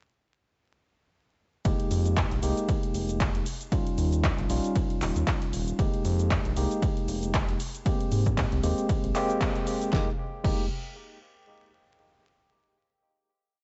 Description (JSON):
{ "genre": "deep house", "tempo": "116 BPM", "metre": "4/4", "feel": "swing 56% on 16ths", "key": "F minor", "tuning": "A4 = 441 Hz", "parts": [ { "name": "tine electric piano", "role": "stabs", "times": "1.6-10.6 s", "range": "G3 to G4", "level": "-33 LUFS", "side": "equal", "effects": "sidechain pumping, digital delay" }, { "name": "round analog bass", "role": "bass", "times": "1.7-10.7 s", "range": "Eb1 to Ab2", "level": "-31 LUFS", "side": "equal", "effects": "sidechain pumping" }, { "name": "deep house drum kit", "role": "drums", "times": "1.7-10.6 s", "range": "crash cymbal, handclaps, hi-hat, ride cymbal, shaker, snare drum", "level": "-38 LUFS", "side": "equal", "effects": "overdrive, small room ambience" }, { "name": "electronic kick drum", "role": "drums", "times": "1.7-10.6 s", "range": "none", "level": "-31 LUFS", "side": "equal", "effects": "overdrive, small room ambience" } ], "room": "digital ambience", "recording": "vinyl crackle, nothing above 7.9 kHz", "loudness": "-27 LUFS", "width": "mono", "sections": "1.7-9.9 drop; 9.9-12.0 final chord", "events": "drop 1.7-9.9; band accent 9.4", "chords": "1.7 Fm11; 3.5 Eb9; 5.8 Fm11; 7.6 Abmaj9; 9.9 Fm11" }